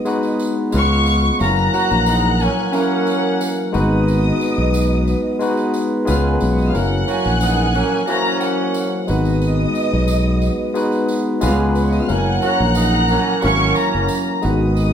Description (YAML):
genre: lush 1970s-style soul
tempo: 90 BPM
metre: 4/4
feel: straight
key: unclear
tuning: A4 = 440 Hz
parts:
  - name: warm symphonic string section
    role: second line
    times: 0.0-14.9 s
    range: G#4 to F#6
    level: -26 LUFS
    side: right 1 dB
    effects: none
  - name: barky tine electric piano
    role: accompaniment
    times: 0.0-14.9 s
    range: F#3 to C#5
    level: -20 LUFS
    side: left 2 dB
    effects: medium stereo tremolo
  - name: dark French horn section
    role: sustained chords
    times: 0.0-14.9 s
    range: C#3 to B4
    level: -27 LUFS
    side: right 3 dB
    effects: none
  - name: tambourine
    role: percussion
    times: 0.1-14.9 s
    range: none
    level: -37 LUFS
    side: right 4 dB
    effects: none
  - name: fingered electric bass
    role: bass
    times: 0.7-14.9 s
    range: F#1 to C#2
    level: -18 LUFS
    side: equal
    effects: none
  - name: warm chamber violin section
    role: melody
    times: 0.8-14.4 s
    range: E#5 to C#6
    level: -21 LUFS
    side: left 2 dB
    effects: none
  - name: warm horn section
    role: stabs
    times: 1.7-14.4 s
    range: F#3 to F#4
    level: -22 LUFS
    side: right 4 dB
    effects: none
room: wet large studio reverb, RT60 0.9 s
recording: band playing live in one room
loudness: -15 LUFS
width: side -8 dB against mid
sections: 0.0-14.9 A section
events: none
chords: 0.0 G#m7; 0.7 C#7; 1.4 F#7; 3.7 G#m7; 6.1 C#7; 6.7 F#7; 9.1 G#m7; 11.4 C#7; 12.1 F#7